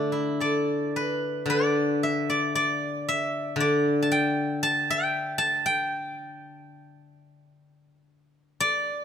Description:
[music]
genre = chinese traditional, Chinese solo plucked strings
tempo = 55-61 BPM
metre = 4/4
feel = rubato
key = D zhi mode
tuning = A4 = 440 Hz
[part]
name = steel-string zither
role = solo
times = 0.0-9.0 s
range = D3 to A5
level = -23 LUFS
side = left 1 dB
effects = none
[sound]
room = light reverb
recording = close, detailed microphones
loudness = -23 LUFS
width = side -8 dB against mid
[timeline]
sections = 0.0-1.5 A section; 1.5-9.0 B section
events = none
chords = none

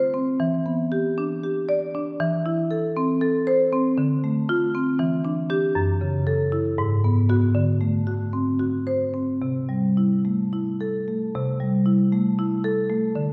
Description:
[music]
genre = classical, contemporary piece for solo marimba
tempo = 234 BPM (eighths)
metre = 7/8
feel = rubato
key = C major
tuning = A4 = 440 Hz
[part]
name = marimba with medium hard mallets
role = solo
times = 0.0-13.3 s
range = F#2 to D5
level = -23 LUFS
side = equal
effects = none
[sound]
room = wet scoring stage reverb, RT60 1.6 s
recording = heard from further back in the room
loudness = -23 LUFS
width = mono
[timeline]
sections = 0.0-11.3 A section; 11.3-13.3 A section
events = none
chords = 0.4 Em7; 2.2 C6/E; 4.0 Dm7; 5.0 Em7; 5.8 F#m7; 6.8 Abm7; 7.5 D7; 9.4 C6

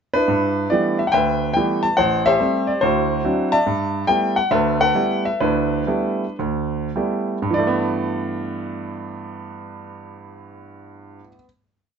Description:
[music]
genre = solo jazz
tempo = 98-145 BPM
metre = 4/4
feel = swing 67% on 8ths, rubato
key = G major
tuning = A4 = 445 Hz
[part]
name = clear grand piano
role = solo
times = 0.1-11.4 s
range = A1 to A5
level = -18 LUFS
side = equal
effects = none
[sound]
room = moderate small room reverb, RT60 0.5 s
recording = nothing above 7.8 kHz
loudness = -18 LUFS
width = side -6 dB against mid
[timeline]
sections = 0.0-0.3 pickup bar; 0.3-7.5 A section; 7.5-12.0 final chord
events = slowing down 3.7-7.5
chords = 0.3 G69; 2.0 Am7; 2.8 D9; 3.7 G69

